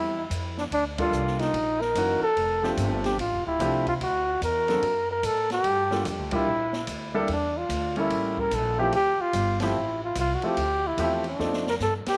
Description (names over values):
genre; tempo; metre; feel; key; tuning
jazz, small-group swing and bop; 146 BPM; 4/4; swing 64% on 8ths; D minor; A4 = 440 Hz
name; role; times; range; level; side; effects
breathy flugelhorn; melody; 0.0-12.2 s; D4 to A#4; -28 LUFS; equal; tape echo
warm grand piano; accompaniment; 0.0-11.6 s; E3 to A4; -32 LUFS; equal; none
upright bass; bass; 0.0-12.1 s; D1 to A2; -35 LUFS; equal; none
open jazz drum kit; drums; 0.3-12.1 s; hi-hat, kick drum, ride cymbal, snare drum; -38 LUFS; equal; none
room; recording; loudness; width
moderate plate reverb, RT60 2.1 s; none; -26 LUFS; mono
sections
0.0-12.2 A section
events
band accent 0.9, 6.3, 9.5, 12.0; drum fill 11.4-11.8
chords
0.0 Dm11 (rootless); 0.7 Gm7; 1.5 F#6; 2.4 F69; 4.0 D(b13); 5.6 Gm9; 7.3 Em7b5; 8.1 A7b9; 8.9 Dm11; 11.4 F9